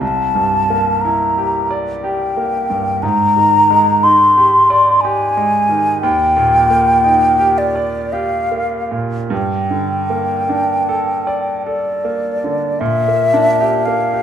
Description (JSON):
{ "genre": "classical, impressionist duo for flute and grand piano", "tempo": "50-62 BPM", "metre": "3/4", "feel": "rubato", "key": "unclear", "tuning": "A4 = 438 Hz", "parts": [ { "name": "mellow hollow concert flute", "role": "melody", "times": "0.0-14.2 s", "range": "D5 to C6", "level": "-13 LUFS", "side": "left 1 dB", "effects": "none" }, { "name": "clear grand piano", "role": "accompaniment", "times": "0.0-14.2 s", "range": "C2 to D5", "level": "-19 LUFS", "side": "right 4 dB", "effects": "none" } ], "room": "wet recital hall reverb, RT60 1.4 s", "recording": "minimal, uncompressed stereo recording", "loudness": "-12 LUFS", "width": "side -9 dB against mid", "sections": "0.0-12.8 A section; 12.8-14.2 B section", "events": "none", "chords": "0.0 C13; 3.0 Abmaj7#11; 6.0 Ebmaj7; 9.3 Gmadd9; 12.8 Bb6" }